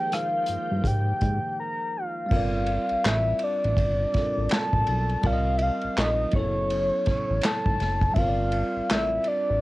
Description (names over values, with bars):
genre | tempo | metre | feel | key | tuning
R&B, neo-soul | 82 BPM | 4/4 | swing 62% on 16ths | unclear | A4 = 437 Hz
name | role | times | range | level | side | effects
soft octave-layered synth lead | melody | 0.0-9.6 s | C#5 to Bb5 | -26 LUFS | left 1 dB | chorus, cassette tape
bell-like tine electric piano | accompaniment | 0.0-9.6 s | F3 to Eb5 | -32 LUFS | right 2 dB | cassette tape
phased string machine | sustained chords | 0.0-2.3 s | Eb3 to G5 | -40 LUFS | equal | ensemble chorus, phaser, cassette tape
unplugged drum kit | drums | 0.1-9.5 s | crash cymbal, handclaps, hi-hat, kick drum, ride cymbal, rim click, snare drum | -28 LUFS | equal | cassette tape
fat analog bass | bass | 0.5-9.6 s | F#1 to Ab2 | -27 LUFS | equal | none
room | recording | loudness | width
light reverb | home recording on cassette | -22 LUFS | side -18 dB against mid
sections
0.0-2.3 A section; 2.3-9.6 B section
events
break 1.6-2.3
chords
0.0 Fm11; 2.3 Gm11; 5.2 Cm7; 6.3 F#m11; 8.2 Gm11